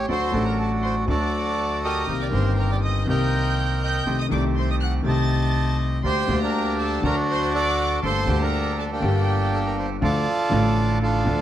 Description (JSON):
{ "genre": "tango", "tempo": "121 BPM", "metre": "4/4", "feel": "rubato", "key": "G harmonic minor", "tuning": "A4 = 437 Hz", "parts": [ { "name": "bandoneon", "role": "melody", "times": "0.0-11.4 s", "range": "Bb3 to A5", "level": "-25 LUFS", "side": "right 1 dB", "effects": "none" }, { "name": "warm concert grand piano", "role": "accompaniment", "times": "0.0-11.4 s", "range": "G1 to A4", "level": "-25 LUFS", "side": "left 2 dB", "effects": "none" }, { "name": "bandoneon", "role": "stabs", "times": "0.0-11.4 s", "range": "A3 to A4", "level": "-34 LUFS", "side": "right 5 dB", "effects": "none" }, { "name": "upright bass", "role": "bass", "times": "0.0-11.4 s", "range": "G1 to D2", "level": "-25 LUFS", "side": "right 1 dB", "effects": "none" }, { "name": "rich chamber violin section", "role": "second line", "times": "0.1-9.7 s", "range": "G5 to A6", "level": "-31 LUFS", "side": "equal", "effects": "none" } ], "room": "light reverb", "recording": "none", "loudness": "-20 LUFS", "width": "side -12 dB against mid", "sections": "0.0-10.0 A section; 10.0-11.4 B section", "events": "none", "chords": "0.1 D; 2.1 Cm7; 4.1 Am7b5/C; 6.0 Gm/D; 7.0 D; 8.0 Gmadd9; 10.0 Dm", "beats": "| 0.09 0.58 1.08 1.58 | 2.08 2.58 3.07 3.57 | 4.07 4.56 5.06 5.55 | 6.04 6.54 7.04 7.53 | 8.03 8.52 9.02 9.52 | 10.02 10.52 11.01" }